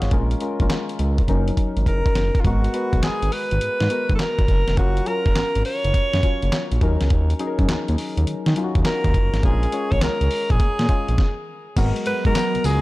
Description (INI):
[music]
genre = R&B, new jack swing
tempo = 103 BPM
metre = 4/4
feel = swing 67% on 16ths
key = G# dorian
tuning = A4 = 442 Hz
[part]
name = soft electric-piano-like synth keys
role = accompaniment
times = 0.0-12.8 s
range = F#3 to F#5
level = -27 LUFS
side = left 3 dB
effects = chorus
[part]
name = smooth synth bass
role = bass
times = 0.0-12.8 s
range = E#1 to D#3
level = -21 LUFS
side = equal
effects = none
[part]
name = dusty soul sampler-style drum kit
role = drums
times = 0.0-12.8 s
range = crash cymbal, handclaps, hi-hat, kick drum, snare drum, tambourine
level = -22 LUFS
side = equal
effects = none
[part]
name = bright alto saxophone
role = melody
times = 1.9-12.8 s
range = E#4 to C#5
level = -24 LUFS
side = equal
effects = none
[part]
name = phased analog pad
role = sustained chords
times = 11.8-12.8 s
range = F#3 to A#5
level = -28 LUFS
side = right 3 dB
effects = phaser, chorus
[sound]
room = little or no reverb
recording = dark, warm production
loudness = -18 LUFS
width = side -19 dB against mid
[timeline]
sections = 0.0-2.4 A section; 2.4-11.8 B section; 11.8-12.8 C section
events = drum fill 1.3-2.4; stop 11.2-11.8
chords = 0.1 A#m7; 1.3 F#6; 2.4 G#m9; 4.8 F#maj7; 6.8 D#m7; 9.4 A#m7; 11.8 G#m9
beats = | 0.12 0.70 1.28 1.86 | 2.44 3.03 3.61 4.19 | 4.78 5.36 5.94 6.52 | 7.11 7.69 8.27 8.85 | 9.44 10.02 10.60 11.18 | 11.77 12.35